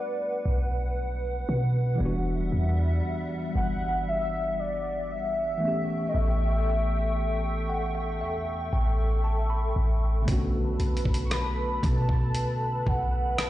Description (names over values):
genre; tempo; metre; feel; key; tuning
contemporary R&B; 58 BPM; 4/4; straight; unclear; A4 = 440 Hz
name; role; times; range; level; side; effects
warm velvety synth lead; melody; 0.0-13.5 s; D5 to C#6; -31 LUFS; left 1 dB; chorus, tape echo
tine electric piano; accompaniment; 0.0-13.5 s; C#3 to B5; -33 LUFS; equal; medium stereo tremolo
hollow soft pad; sustained chords; 0.0-13.5 s; G3 to C#6; -34 LUFS; equal; ensemble chorus
clean 808-style bass; bass; 0.5-13.4 s; E1 to B2; -27 LUFS; equal; none
dusty soul sampler-style drum kit; drums; 10.3-13.5 s; hi-hat, kick drum, rim click; -28 LUFS; equal; none
room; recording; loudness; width
light reverb, digital ambience; played on a big sound system in a bare room, stone room reverb, nothing above 10.5 kHz; -25 LUFS; side -14 dB against mid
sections
0.0-13.5 A section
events
tine electric piano fill 7.2-10.3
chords
0.0 Gmaj7/B; 2.0 Em9; 5.6 A7; 10.3 Bm7